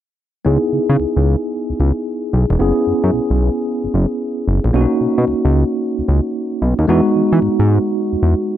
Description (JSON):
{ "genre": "R&B, new jack swing", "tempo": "112 BPM", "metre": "4/4", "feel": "swing 63% on 16ths", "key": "C# dorian", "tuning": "A4 = 440 Hz", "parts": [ { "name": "tine electric piano", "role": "accompaniment", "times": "0.4-8.6 s", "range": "G#3 to G#4", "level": "-17 LUFS", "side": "equal", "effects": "fast stereo tremolo, low-pass filter" }, { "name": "fat analog bass", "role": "bass", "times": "0.5-8.3 s", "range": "E1 to E3", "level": "-15 LUFS", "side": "equal", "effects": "none" } ], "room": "light reverb", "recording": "none", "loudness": "-14 LUFS", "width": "side -12 dB against mid", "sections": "0.5-8.6 A section", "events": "filter sweep on tine electric piano 0.5-8.6", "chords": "0.5 C#m7; 2.6 F#7sus4; 4.7 Bmaj7; 6.9 Emaj7", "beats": "| 0.46 0.99 1.53 2.06 | 2.60 3.14 3.67 4.21 | 4.74 5.28 5.81 6.35 | 6.89 7.42 7.96 8.49" }